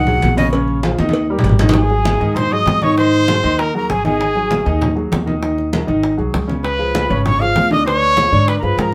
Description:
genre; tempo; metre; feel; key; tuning
Afro-Cuban jazz; 196 BPM; 4/4; straight; Ab mixolydian; A4 = 440 Hz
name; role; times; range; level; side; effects
breathy bright jazz flute; second line; 0.0-8.9 s; Eb5 to F6; -25 LUFS; equal; none
upright bass; bass; 0.0-8.9 s; Ab1 to Ab2; -22 LUFS; equal; none
warm grand piano; accompaniment; 0.1-8.9 s; Db3 to Eb5; -21 LUFS; equal; none
congas; percussion; 0.1-8.9 s; none; -24 LUFS; equal; none
cowbell and bongos; percussion; 0.2-8.9 s; none; -28 LUFS; equal; none
warm trumpet; melody; 1.7-8.9 s; Ab4 to F5; -20 LUFS; equal; none
room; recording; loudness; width
moderate studio ambience, RT60 0.4 s; band playing live in one room; -16 LUFS; mono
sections
0.0-1.8 A section; 1.8-8.9 B section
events
flute solo 0.0-1.8; drum fill 1.0-1.8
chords
0.0 Ab7; 0.5 Bbm7; 1.1 Eb; 1.8 Ab7; 5.4 Ebm; 6.0 Ab7; 6.6 Db7; 7.9 Ddim7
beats
0.23 | 0.54 0.84 1.15 1.45 | 1.75 2.06 2.37 2.67 | 2.98 3.28 3.59 3.89 | 4.20 4.50 4.81 5.12 | 5.42 5.73 6.03 6.34 | 6.64 6.95 7.26 7.56 | 7.87 8.17 8.48 8.78

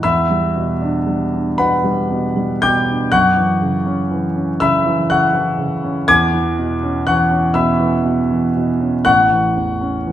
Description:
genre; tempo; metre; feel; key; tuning
classical, impressionist solo piano; 40 BPM (dotted quarters); 6/8; uneven beats, rubato; unclear; A4 = 444 Hz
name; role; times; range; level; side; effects
warm concert grand piano; solo; 0.0-10.1 s; A1 to G#6; -14 LUFS; equal; none
room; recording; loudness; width
wet recital hall reverb, RT60 1.3 s; recorded in a church or concert hall; -14 LUFS; side -11 dB against mid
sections
0.0-10.1 A section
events
none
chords
0.0 Em9; 3.1 F#7sus4; 6.1 E69; 9.0 A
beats
| 0.03 1.58 | 3.12 4.59 | 6.08 7.55 | 9.04

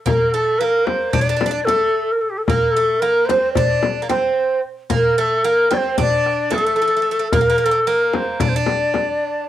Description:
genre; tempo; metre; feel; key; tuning
Turkish makam ensemble; 223 BPM (eighths); 9/8; straight; unclear; A4 = 441 Hz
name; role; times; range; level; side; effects
breathy ney; melody; 0.1-9.5 s; G4 to D5; -17 LUFS; left 1 dB; cassette tape
Greek bouzouki; second line; 0.1-9.4 s; A3 to D4; -23 LUFS; right 7 dB; cassette tape
darbuka; percussion; 0.1-9.1 s; none; -25 LUFS; left 2 dB; none
frame drum; percussion; 0.1-9.1 s; none; -23 LUFS; left 4 dB; none
room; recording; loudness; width
moderate small room reverb, RT60 0.5 s; home recording on cassette; -15 LUFS; side -12 dB against mid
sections
0.0-9.5 A section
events
none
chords
none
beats
| 0.07 0.34 0.61 0.88 1.15 1.42 1.68 1.95 2.22 | 2.49 2.76 3.03 3.30 3.56 3.83 4.10 4.37 4.64 | 4.91 5.18 5.45 5.72 5.99 6.25 6.52 6.79 7.06 | 7.33 7.60 7.87 8.14 8.40 8.67 8.94 9.21 9.48

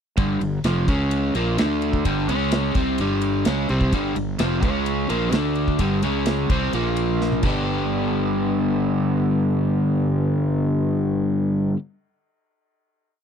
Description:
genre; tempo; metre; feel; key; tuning
classic rock; 128 BPM; 4/4; straight; G mixolydian; A4 = 440 Hz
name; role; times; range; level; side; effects
overdriven electric guitar; riff; 0.2-11.8 s; F2 to G4; -21 LUFS; equal; none
fuzz fingered electric bass; bass; 0.2-11.7 s; F1 to D2; -25 LUFS; equal; overdrive
big rock drum kit; drums; 0.2-7.5 s; crash cymbal, kick drum, ride cymbal, snare drum, toms; -23 LUFS; equal; none
room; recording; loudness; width
little or no reverb; dry, close 1970s-style studio recording; -19 LUFS; side -7 dB against mid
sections
0.2-7.7 riff; 7.7-11.4 final hit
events
drum fill 7.2-7.7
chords
0.2 G5; 0.9 C#5; 1.4 Bb5; 1.6 D5; 2.1 G5; 2.3 C#5; 2.8 G5; 4.6 C#5; 5.1 Bb5; 5.3 D5; 5.8 G5; 6.0 C#5; 6.5 C5; 6.7 Bb5; 7.4 G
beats
| 0.19 0.66 1.13 1.59 | 2.06 2.53 3.00 3.46 | 3.93 4.40 4.87 5.34 | 5.80 6.27 6.74 7.21 | 7.68 8.15 8.61 9.08 | 9.55 10.02 10.48 10.95

